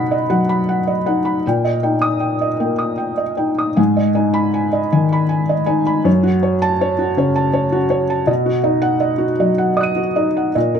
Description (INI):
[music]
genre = neoclassical minimalist piano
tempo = 79 BPM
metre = 3/4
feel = uneven beats, rubato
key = unclear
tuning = A4 = 440 Hz
[part]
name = felt-muted upright piano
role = solo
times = 0.0-10.8 s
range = F#2 to D#7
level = -15 LUFS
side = equal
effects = none
[sound]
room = light reverb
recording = close, detailed microphones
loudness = -15 LUFS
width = side -7 dB against mid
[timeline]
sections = 0.0-3.8 A section; 3.8-10.8 A section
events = none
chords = 0.0 B; 1.4 D#/A#; 3.8 G#m; 6.1 F#m; 8.3 B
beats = 0.67 | 1.43 2.21 3.00 | 3.78 4.55 5.31 | 6.06 6.81 7.55 | 8.28 9.03 9.78 | 10.55